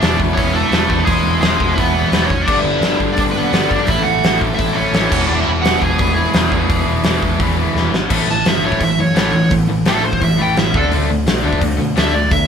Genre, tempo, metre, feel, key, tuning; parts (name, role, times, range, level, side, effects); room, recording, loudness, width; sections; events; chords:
punk rock; 171 BPM; 4/4; straight; A major; A4 = 439 Hz
nasal lead guitar with a parked wah; melody; 0.0-12.5 s; G#3 to A5; -19 LUFS; right 2 dB; overdrive
overdriven electric guitar; riff; 0.0-12.5 s; E2 to D4; -20 LUFS; left 5 dB
sludgy distorted guitar; riff; 0.0-12.5 s; G2 to E4; -21 LUFS; right 5 dB; overdrive
overdriven picked electric bass; bass; 0.0-12.5 s; E1 to B2; -22 LUFS; equal
big rock drum kit; drums; 0.0-12.4 s; crash cymbal, hi-hat, kick drum, snare drum; -18 LUFS; equal
light reverb; band playing live in one room; -13 LUFS; side -7 dB against mid
0.0-8.1 A section; 8.1-12.5 B section
drum fill 7.8-8.1; lead electric guitar solo 8.1-12.5
0.0 E; 2.5 G; 3.9 A; 5.1 E; 8.1 A; 10.7 D5